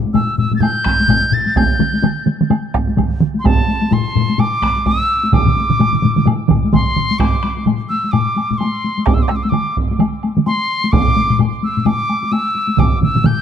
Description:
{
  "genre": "japanese traditional, taiko drum ensemble",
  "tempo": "128 BPM",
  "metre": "4/4",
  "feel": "swing 60% on 16ths",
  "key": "D suspended pentatonic",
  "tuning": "A4 = 440 Hz",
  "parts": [
    { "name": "taiko ensemble", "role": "percussion", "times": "0.0-13.4 s", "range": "none", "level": "-19 LUFS", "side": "left 4 dB", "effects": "none" },
    { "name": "bright piccolo", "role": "melody", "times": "0.1-13.4 s", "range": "A5 to A6", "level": "-19 LUFS", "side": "equal", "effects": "none" },
    { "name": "taiko ensemble", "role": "percussion", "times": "0.1-13.4 s", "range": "none", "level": "-18 LUFS", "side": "left 4 dB", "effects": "none" },
    { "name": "woodblock", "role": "percussion", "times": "0.1-13.4 s", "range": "none", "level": "-30 LUFS", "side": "right 3 dB", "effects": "none" },
    { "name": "solo taiko drums", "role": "percussion", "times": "0.9-12.9 s", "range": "none", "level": "-18 LUFS", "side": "right 3 dB", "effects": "none" },
    { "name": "taiko ensemble", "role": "percussion", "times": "1.8-13.4 s", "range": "none", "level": "-17 LUFS", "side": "right 4 dB", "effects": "none" }
  ],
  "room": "light reverb",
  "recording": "dark, warm production",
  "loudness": "-13 LUFS",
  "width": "side -8 dB against mid",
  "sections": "0.0-7.2 A section; 7.2-13.4 B section",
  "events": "none",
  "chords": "none"
}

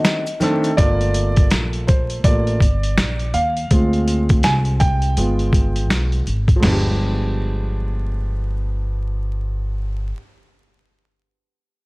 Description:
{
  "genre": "hip hop, jazz-hop",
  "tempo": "82 BPM",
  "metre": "4/4",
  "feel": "swing 60% on 16ths",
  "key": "unclear",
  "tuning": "A4 = 444 Hz",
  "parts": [
    { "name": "dark grand piano", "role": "accompaniment", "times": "0.0-10.2 s", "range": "Eb3 to Ab5", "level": "-22 LUFS", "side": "right 1 dB", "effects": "none" },
    { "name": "boom bap sampler-style drum kit", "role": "drums", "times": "0.0-6.8 s", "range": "crash cymbal, hi-hat, kick drum, snare drum, toms", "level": "-18 LUFS", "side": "equal", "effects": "overdrive" },
    { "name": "maracas and congas", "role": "percussion", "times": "0.0-0.8 s", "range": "none", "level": "-29 LUFS", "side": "right 1 dB", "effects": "none" },
    { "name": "upright bass", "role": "bass", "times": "0.8-10.1 s", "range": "G1 to Eb2", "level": "-20 LUFS", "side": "equal", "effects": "transformer saturation" }
  ],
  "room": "studio reverb",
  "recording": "dry, gritty hardware recording, vinyl crackle",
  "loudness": "-16 LUFS",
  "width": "side -24 dB against mid",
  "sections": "0.8-6.6 A section; 6.6-9.6 B section",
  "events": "break 0.0-0.8; grand piano solo 0.8-6.6",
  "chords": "0.0 D7b9; 0.8 Gm7; 3.7 Dm7b5; 5.2 G7b9"
}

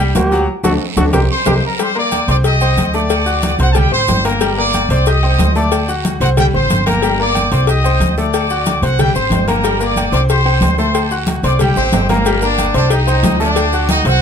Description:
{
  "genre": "latin, salsa",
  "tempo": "183 BPM",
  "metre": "4/4",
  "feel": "straight",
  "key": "G harmonic minor",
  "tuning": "A4 = 440 Hz",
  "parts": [
    { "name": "bright concert grand piano", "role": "accompaniment", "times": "0.0-14.2 s", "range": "F#3 to G6", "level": "-19 LUFS", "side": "left 2 dB", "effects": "none" },
    { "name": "upright bass", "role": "bass", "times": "0.0-14.2 s", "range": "G1 to D2", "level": "-16 LUFS", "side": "right 1 dB", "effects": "none" },
    { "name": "guiro", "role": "percussion", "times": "0.1-14.2 s", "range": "none", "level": "-31 LUFS", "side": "right 10 dB", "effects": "none" },
    { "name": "bright trombone", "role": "melody", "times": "0.2-1.5 s", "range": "F#4 to G4", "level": "-18 LUFS", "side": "right 2 dB", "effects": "slapback echo" },
    { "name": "congas", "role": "percussion", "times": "0.2-14.2 s", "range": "none", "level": "-21 LUFS", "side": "left 1 dB", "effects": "none" },
    { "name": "cowbell", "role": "percussion", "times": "0.2-14.2 s", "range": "none", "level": "-23 LUFS", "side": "left 11 dB", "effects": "none" },
    { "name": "maracas", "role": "percussion", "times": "0.2-14.2 s", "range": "none", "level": "-32 LUFS", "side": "left 5 dB", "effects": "none" },
    { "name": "timbales and agogo bells", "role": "percussion", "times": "0.2-14.1 s", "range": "none", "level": "-24 LUFS", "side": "right 4 dB", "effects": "none" },
    { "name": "clear trumpet section", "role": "melody", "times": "1.3-14.2 s", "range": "Bb3 to Eb6", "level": "-17 LUFS", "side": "equal", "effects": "none" }
  ],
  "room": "light reverb",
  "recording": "close, detailed microphones",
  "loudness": "-12 LUFS",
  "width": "side -7 dB against mid",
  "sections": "0.0-1.8 A section; 1.8-12.3 B section; 12.3-14.2 B section",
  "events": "trombone solo 0.0-1.8; band accent 0.5-1.8; drum fill 1.0-1.8, 11.8-12.3",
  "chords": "0.5 D; 1.1 C5; 2.4 Cm; 3.1 D7; 3.8 C5; 4.4 Gm; 5.1 Cm; 5.7 D7; 6.4 C5; 7.0 Gm; 7.7 Cm; 8.3 D7; 9.0 C5; 9.6 Gm; 10.3 C5; 10.9 D7; 11.6 C5; 12.3 Gm; 12.9 Cm; 13.6 D7"
}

